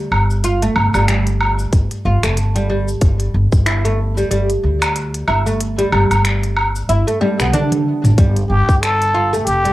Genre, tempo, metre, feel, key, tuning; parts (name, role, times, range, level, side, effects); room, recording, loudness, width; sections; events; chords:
organic downtempo; 93 BPM; 4/4; swing 57% on 16ths; G mixolydian; A4 = 441 Hz
upright bass; bass; 0.0-9.7 s; F1 to D2; -17 LUFS; equal; sidechain pumping
organic electronic drum kit; drums; 0.1-9.7 s; cabasa, finger snaps, hi-hat, toms, woodblock; -18 LUFS; equal; overdrive, cassette tape
oud; arpeggios; 0.4-9.7 s; G3 to F4; -20 LUFS; right 1 dB; cassette tape, tape echo
electronic kick drum; drums; 1.7-3.6, 8.2-8.8 s; -13 LUFS; equal; overdrive, cassette tape
trumpet with plunger mute; melody; 8.5-9.7 s; G4 to A4; -16 LUFS; equal; cassette tape
moderate booth ambience, RT60 0.2 s; home recording on cassette; -13 LUFS; side -16 dB against mid
0.0-9.7 A section
kick drops out 6.9-8.2; drum fill 7.2-8.2
0.0 G5